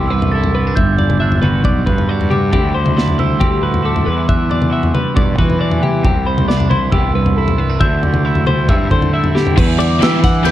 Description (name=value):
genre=math rock and midwest emo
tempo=136 BPM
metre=4/4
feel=straight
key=unclear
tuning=A4 = 440 Hz
part: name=glockenspiel with rubber mallets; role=melody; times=0.0-10.5 s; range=B5 to A6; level=-22 LUFS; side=right 2 dB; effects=slapback echo
part: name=twelve-string electric guitar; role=accompaniment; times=0.0-10.5 s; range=E2 to F#4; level=-21 LUFS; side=right 6 dB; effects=wide subtle chorus
part: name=twelve-string electric guitar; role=arpeggios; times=0.0-10.5 s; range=G4 to F#5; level=-22 LUFS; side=left 6 dB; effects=none
part: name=fuzz fingered electric bass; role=bass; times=0.0-10.5 s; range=G1 to E3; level=-17 LUFS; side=equal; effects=overdrive
part: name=modern studio drum kit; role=drums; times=0.2-10.5 s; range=crash cymbal, kick drum, ride cymbal, snare drum, toms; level=-16 LUFS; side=left 1 dB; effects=none
part: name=overdriven electric guitar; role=riff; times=9.6-10.5 s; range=E3 to G4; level=-18 LUFS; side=equal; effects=none
room=light reverb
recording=dark, warm production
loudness=-12 LUFS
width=side -13 dB against mid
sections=0.0-9.6 A section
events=drum fill 9.4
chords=0.0 Cmaj9; 0.8 Gmaj7; 2.5 D9sus4; 4.1 Em9; 6.0 Cmaj9; 7.8 D9sus4; 9.6 Em9